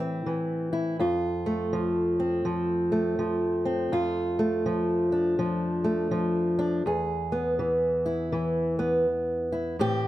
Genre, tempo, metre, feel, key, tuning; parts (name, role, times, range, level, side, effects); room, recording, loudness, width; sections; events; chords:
folk, solo fingerstyle acoustic guitar; 82 BPM; 4/4; swing 62% on 8ths; A4 = 439 Hz
fingerpicked old ladder-braced acoustic guitar; solo; 0.0-10.1 s; E2 to G#4; -24 LUFS; equal
light reverb; close, detailed microphones; -24 LUFS; side -14 dB against mid
0.0-9.8 A section
0.0 Am7; 1.0 F; 3.9 Dm/F; 6.8 E